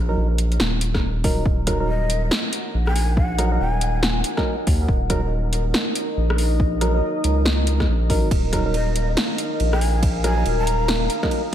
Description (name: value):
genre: deep dubstep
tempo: 140 BPM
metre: 4/4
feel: swing 62% on 16ths, half-time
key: Eb minor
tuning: A4 = 436 Hz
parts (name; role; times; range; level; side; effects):
- saturated sub bass; bass; 0.0-11.1 s; Eb1 to Eb2; -21 LUFS; equal; tube saturation
- percussive organ stab; stabs; 0.1-11.4 s; Gb3 to Bb4; -28 LUFS; right 2 dB; chorus, dub echo
- deep house drum kit; drums; 0.4-11.4 s; hi-hat, ride cymbal, rim click, snare drum; -25 LUFS; equal; overdrive
- electronic kick drum; drums; 0.9-11.3 s; none; -22 LUFS; equal; overdrive
- deep dark ambient pad; sustained chords; 2.4-11.5 s; Eb4 to Gb5; -27 LUFS; left 1 dB; chorus, built-in reverb
- breathy mellow shakuhachi; melody; 1.9-4.2, 8.7-10.9 s; Eb5 to Bb5; -29 LUFS; left 1 dB; dub echo
room: light reverb, digital ambience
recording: none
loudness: -18 LUFS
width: side -10 dB against mid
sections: 0.0-11.5 A section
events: none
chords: 0.0 Ebm